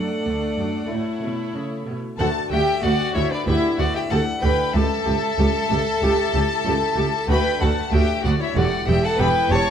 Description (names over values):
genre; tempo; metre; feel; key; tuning
classical, baroque-style concerto movement with solo episodes; 94 BPM; 4/4; straight; D major; A4 = 444 Hz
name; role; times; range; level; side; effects
clear chamber violin section; melody; 0.0-9.7 s; C#5 to C#6; -28 LUFS; left 6 dB; none
rich violin; melody; 0.0-9.7 s; B4 to A5; -28 LUFS; left 3 dB; none
rich chamber violin section; second line; 0.0-9.7 s; D4 to C#5; -25 LUFS; left 1 dB; none
lute; accompaniment; 0.0-9.7 s; D2 to D5; -30 LUFS; right 1 dB; none
rich chamber viola section; accompaniment; 0.0-9.6 s; A3 to G4; -28 LUFS; right 2 dB; none
rich symphonic cello section; bass; 0.0-9.6 s; C#2 to C#3; -26 LUFS; right 2 dB; none
rich chamber double bass section; bass; 2.2-9.6 s; E1 to D2; -24 LUFS; right 2 dB; none
room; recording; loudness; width
moderate recital hall reverb, RT60 1.7 s; dark, warm production; -18 LUFS; side -8 dB against mid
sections
0.0-2.2 A section; 2.2-9.7 B section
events
none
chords
0.0 D; 0.9 A; 2.2 D; 3.5 Em7/D; 4.7 A7/C#; 7.3 D; 8.6 A5/E